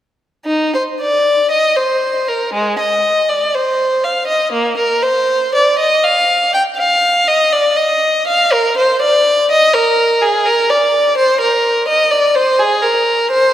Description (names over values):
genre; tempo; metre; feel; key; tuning
classical, baroque-style suite movement for unaccompanied violin; 61 BPM; 4/4; rubato; unclear; A4 = 440 Hz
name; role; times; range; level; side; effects
rich violin; solo; 0.5-13.5 s; Ab3 to G5; -11 LUFS; equal; none
room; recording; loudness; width
wet church reverb, RT60 2.8 s; none; -11 LUFS; side -11 dB against mid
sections
0.5-13.5 A section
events
none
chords
none